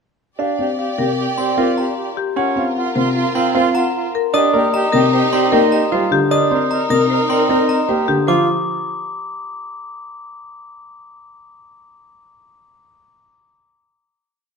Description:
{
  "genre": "classical, minimalist pattern music",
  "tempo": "152 BPM",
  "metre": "5/4",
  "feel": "straight",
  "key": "Bb major",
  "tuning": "A4 = 437 Hz",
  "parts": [
    { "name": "marimba with medium hard mallets", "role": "melody", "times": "0.4-8.5 s", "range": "G4 to Gb5", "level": "-20 LUFS", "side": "left 8 dB", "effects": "none" },
    { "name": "clear soprano saxophone", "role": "second line", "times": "0.4-8.0 s", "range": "F4 to Bb4", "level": "-24 LUFS", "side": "right 6 dB", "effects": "none" },
    { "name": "clear studio string section", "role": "sustained chords", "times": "0.4-8.1 s", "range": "Eb4 to D5", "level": "-24 LUFS", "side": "equal", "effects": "none" },
    { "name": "bright concert grand piano", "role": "arpeggios", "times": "0.4-8.5 s", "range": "C4 to C5", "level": "-20 LUFS", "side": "right 6 dB", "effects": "none" },
    { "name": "dark concert grand piano", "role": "accompaniment", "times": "0.6-8.5 s", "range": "C3 to C4", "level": "-20 LUFS", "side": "left 1 dB", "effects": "none" },
    { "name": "glockenspiel with brass mallets", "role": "arpeggios", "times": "1.4-8.5 s", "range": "Bb5 to Eb6", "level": "-24 LUFS", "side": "left 3 dB", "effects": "none" }
  ],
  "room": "moderate large studio reverb, RT60 1.4 s",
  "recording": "none",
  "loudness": "-14 LUFS",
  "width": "side -5 dB against mid",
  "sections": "0.4-8.3 A section; 8.3-10.3 final chord",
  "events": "none",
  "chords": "0.4 Bb6; 2.4 Gbmaj7; 4.3 Ebmaj9; 6.3 Cm7; 8.3 F5"
}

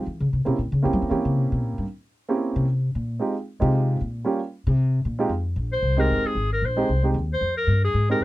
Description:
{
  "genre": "jazz, small-group swing and bop",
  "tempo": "228 BPM",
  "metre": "4/4",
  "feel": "swing 58% on 8ths",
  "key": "F minor",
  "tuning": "A4 = 440 Hz",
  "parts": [
    { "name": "warm baby grand piano", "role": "accompaniment", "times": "0.0-8.2 s", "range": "G3 to G4", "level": "-25 LUFS", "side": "right 3 dB", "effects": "none" },
    { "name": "upright bass", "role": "bass", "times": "0.0-8.2 s", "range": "G1 to G3", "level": "-22 LUFS", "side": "left 1 dB", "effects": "none" },
    { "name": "bright clarinet", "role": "melody", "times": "5.7-8.2 s", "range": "Ab4 to C5", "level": "-24 LUFS", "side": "left 1 dB", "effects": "none" }
  ],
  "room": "little or no reverb",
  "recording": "dry, close 1970s-style studio recording",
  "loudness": "-21 LUFS",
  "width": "side -17 dB against mid",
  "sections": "0.0-5.3 A section; 5.3-8.2 B section",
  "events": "upright bass solo 0.0-5.3",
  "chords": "0.0 C7b9; 3.2 Fm7; 4.2 Gm7b5; 4.8 C5; 5.3 Fm7"
}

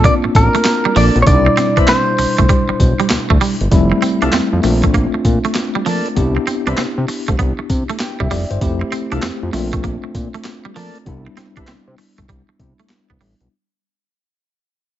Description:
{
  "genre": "R&B, new jack swing",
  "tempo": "98 BPM",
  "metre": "4/4",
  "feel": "swing 65% on 16ths",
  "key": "C major",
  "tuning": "A4 = 440 Hz",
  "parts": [
    { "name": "direct-recorded clean electric guitar", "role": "melody", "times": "0.0-3.1 s", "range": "Bb4 to D5", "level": "-16 LUFS", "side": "equal", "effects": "tape echo" },
    { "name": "tine electric piano", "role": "accompaniment", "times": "0.0-13.5 s", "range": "B2 to G5", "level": "-20 LUFS", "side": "left 2 dB", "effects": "medium stereo tremolo" },
    { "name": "twangy electric guitar", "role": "riff", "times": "0.0-13.3 s", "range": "F3 to D4", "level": "-21 LUFS", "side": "right 7 dB", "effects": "wide subtle chorus" },
    { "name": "fat analog bass", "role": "bass", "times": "0.0-13.5 s", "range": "F1 to C3", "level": "-17 LUFS", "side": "equal", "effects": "none" },
    { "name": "boom bap sampler-style drum kit", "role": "drums", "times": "0.0-13.5 s", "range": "handclaps, hi-hat, kick drum, snare drum, tambourine", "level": "-18 LUFS", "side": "equal", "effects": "overdrive" },
    { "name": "tonewheel organ", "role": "stabs", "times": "1.0-11.7 s", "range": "Bb3 to B4", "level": "-23 LUFS", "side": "left 1 dB", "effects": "slow rotary speaker, tube saturation" }
  ],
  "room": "light reverb",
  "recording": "nothing above 7.8 kHz",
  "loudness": "-13 LUFS",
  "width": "side -12 dB against mid",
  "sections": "0.0-3.7 A section; 3.7-13.5 B section",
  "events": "fade-out 3.7-13.5",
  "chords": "0.0 Bbmaj7; 1.3 Cmaj7; 3.7 Fmaj7; 4.6 Bbmaj7; 6.2 Cmaj7; 8.6 Fmaj7; 9.5 Bbmaj7; 11.1 Cmaj7"
}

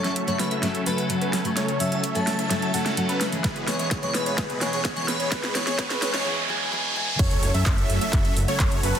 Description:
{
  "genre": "EDM, festival progressive house",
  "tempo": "128 BPM",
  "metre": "4/4",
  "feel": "straight",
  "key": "F# minor",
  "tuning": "A4 = 440 Hz",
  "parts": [
    { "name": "airy dreamy lead", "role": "melody", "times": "0.0-6.2 s", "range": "B4 to A5", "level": "-31 LUFS", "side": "equal", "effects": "chorus, cassette tape, tape echo" },
    { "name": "picked steel-string acoustic guitar", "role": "accompaniment", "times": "0.0-7.2 s", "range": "E3 to B4", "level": "-29 LUFS", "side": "left 2 dB", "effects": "sidechain pumping" },
    { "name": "lush unison pad", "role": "sustained chords", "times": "0.2-9.0 s", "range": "B2 to C#5", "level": "-34 LUFS", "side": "equal", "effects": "chorus, phaser, vintage 12-bit sampler grit, sidechain pumping" },
    { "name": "wide unison lead", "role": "arpeggios", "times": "0.0-9.0 s", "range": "B4 to F#5", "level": "-32 LUFS", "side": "equal", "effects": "sidechain pumping, tape echo" },
    { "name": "supersaw chords", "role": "riff", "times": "0.0-9.0 s", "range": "E3 to F#5", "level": "-29 LUFS", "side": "right 1 dB", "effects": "phaser, sidechain pumping, low-pass filter" },
    { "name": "big-room dance drum kit", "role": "drums", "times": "0.0-9.0 s", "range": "crash cymbal, handclaps, hi-hat, snare drum", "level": "-29 LUFS", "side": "equal", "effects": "overdrive" },
    { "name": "riser, noise sweep and sub drop", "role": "sound effects", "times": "3.0-9.0 s", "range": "none", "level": "-32 LUFS", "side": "right 2 dB", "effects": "none" },
    { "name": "electronic kick drum", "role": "drums", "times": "3.4-8.7 s", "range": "none", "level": "-24 LUFS", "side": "equal", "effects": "overdrive" },
    { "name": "fat analog bass", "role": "bass", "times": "7.2-8.9 s", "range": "F#1 to F#2", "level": "-26 LUFS", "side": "equal", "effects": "sidechain pumping" }
  ],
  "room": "moderate lush hall reverb, RT60 2.0 s",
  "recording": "dense, heavily limited modern master, high-pass filter",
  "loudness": "-21 LUFS",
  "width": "side -9 dB against mid",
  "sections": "0.0-7.2 A section; 7.2-9.0 B section",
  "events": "build-up 0.0-7.2; drum fill 0.0-6.3; filter sweep on supersaw synth 0.0-7.2; filter sweep on analog synth lead 0.0-7.2; filter sweep 0.0-7.2; riser 3.0-7.2; noise sweep 5.3-7.2; drop 7.2-9.0; impact 7.2-9.0",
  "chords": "0.0 F#m; 3.4 E; 7.2 F#m"
}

